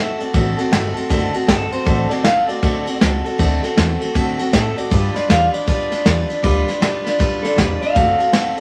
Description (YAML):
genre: rockabilly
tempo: 158 BPM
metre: 4/4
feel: swing 63% on 8ths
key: D mixolydian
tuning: A4 = 440 Hz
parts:
  - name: electric guitar through a small old amp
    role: melody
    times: 0.0-8.6 s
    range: A4 to F5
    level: -23 LUFS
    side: equal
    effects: none
  - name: picked steel-string acoustic guitar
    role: accompaniment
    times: 0.0-8.6 s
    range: D3 to B4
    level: -22 LUFS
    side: equal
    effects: none
  - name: upright bass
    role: bass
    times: 0.0-8.6 s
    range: E1 to A2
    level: -24 LUFS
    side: equal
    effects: none
  - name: soft brush drum kit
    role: drums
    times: 0.2-8.6 s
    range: kick drum, ride cymbal, snare drum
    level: -21 LUFS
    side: equal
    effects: none
room: moderate studio reverb, RT60 0.6 s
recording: vinyl crackle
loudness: -17 LUFS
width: mono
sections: 0.0-8.6 A section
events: clean electric guitar solo 0.0-8.6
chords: 0.0 D7; 4.9 G7; 8.0 D7